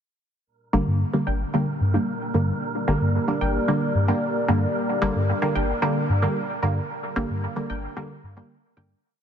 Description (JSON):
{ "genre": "dub techno", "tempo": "112 BPM", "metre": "4/4", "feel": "straight", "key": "G minor", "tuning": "A4 = 441 Hz", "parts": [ { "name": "dark analog pad", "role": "sustained chords", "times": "0.5-9.0 s", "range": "Bb3 to D5", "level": "-30 LUFS", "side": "left 2 dB", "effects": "chorus" }, { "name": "wind-like tuned noise texture", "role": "texture", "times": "1.4-9.0 s", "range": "Bb4", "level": "-33 LUFS", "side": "right 4 dB", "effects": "built-in reverb" }, { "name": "filtered dub chord stab", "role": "stabs", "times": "0.7-8.9 s", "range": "D3 to Bb3", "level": "-24 LUFS", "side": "right 1 dB", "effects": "chorus, phaser, cassette tape, dub echo" }, { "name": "soft dub sub bass", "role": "bass", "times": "0.7-8.9 s", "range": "G1 to G2", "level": "-24 LUFS", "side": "equal", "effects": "none" }, { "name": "wavetable chord stab", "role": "riff", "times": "1.3-9.0 s", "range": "D4 to G5", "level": "-36 LUFS", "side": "right 1 dB", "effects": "dub echo" } ], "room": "light reverb", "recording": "dense, heavily limited modern master", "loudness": "-21 LUFS", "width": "side -8 dB against mid", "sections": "0.5-9.0 groove", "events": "fade-out 6.2-9.0", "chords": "0.5 Gm" }